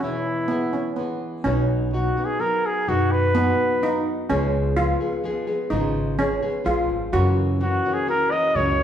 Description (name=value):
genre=mexican folk, mariachi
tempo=127 BPM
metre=3/4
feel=straight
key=B major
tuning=A4 = 439 Hz
part: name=warm trumpet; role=melody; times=0.0-4.1, 7.6-8.8 s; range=E4 to D#5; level=-22 LUFS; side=equal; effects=none
part: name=steel pan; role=second line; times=0.0-8.8 s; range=B3 to F#4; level=-25 LUFS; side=right 2 dB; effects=none
part: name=nylon-string guitar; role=accompaniment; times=0.0-8.8 s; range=E2 to G#4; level=-26 LUFS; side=left 2 dB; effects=none
part: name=upright bass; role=bass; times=1.5-8.8 s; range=G#1 to F#2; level=-24 LUFS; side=equal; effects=none
room=wet large studio reverb, RT60 1.2 s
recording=band playing live in one room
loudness=-20 LUFS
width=side -9 dB against mid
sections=0.0-1.5 A section; 1.5-8.8 B section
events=break 0.0-1.5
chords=0.0 E; 1.5 B; 4.3 C#7; 7.1 F#7